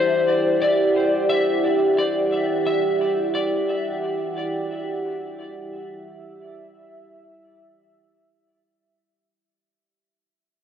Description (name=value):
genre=ambient dub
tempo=88 BPM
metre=4/4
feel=swing 60% on 16ths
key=E minor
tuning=A4 = 439 Hz
part: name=electric slide guitar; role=melody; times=0.0-4.0 s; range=C5 to E5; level=-23 LUFS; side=left 2 dB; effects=dub echo
part: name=deep dark ambient pad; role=sustained chords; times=0.0-9.5 s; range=E4 to G5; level=-22 LUFS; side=right 1 dB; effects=chorus, built-in reverb
room=moderate huge ambient reverb, RT60 7.2 s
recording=dark, warm production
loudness=-19 LUFS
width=side -8 dB against mid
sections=0.0-9.5 A section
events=fade-out 0.0-9.5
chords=0.0 Em9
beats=0.62 | 1.30 1.99 2.67 3.35 | 4.03 4.71 5.40 6.08 | 6.76 7.44 8.12 8.80